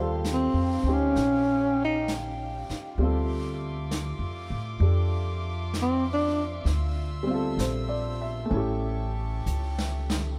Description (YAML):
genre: jazz ballad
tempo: 65 BPM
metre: 4/4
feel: swing 68% on 8ths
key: D minor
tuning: A4 = 440 Hz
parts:
  - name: warm upright piano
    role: accompaniment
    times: 0.0-10.4 s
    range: G3 to E5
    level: -35 LUFS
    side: equal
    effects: none
  - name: warm chamber string section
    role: sustained chords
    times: 0.0-10.4 s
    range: F4 to E6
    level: -41 LUFS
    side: equal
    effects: none
  - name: upright bass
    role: bass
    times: 0.0-10.4 s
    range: A1 to A2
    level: -31 LUFS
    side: equal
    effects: none
  - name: jazz brush drum kit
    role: drums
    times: 0.2-10.4 s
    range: brushed snare drum, hi-hat, snare drum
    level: -39 LUFS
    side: equal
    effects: none
  - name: breathy tenor saxophone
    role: melody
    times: 0.3-6.4 s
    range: C4 to Eb4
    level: -28 LUFS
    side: equal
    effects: none
room: moderate plate reverb, RT60 3.0 s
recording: heard from further back in the room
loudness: -27 LUFS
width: mono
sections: 0.0-10.4 A section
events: tenor saxophone solo 0.0-10.4; drum fill 9.5-10.4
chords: 0.0 Eb13; 3.0 Dm9; 8.5 A7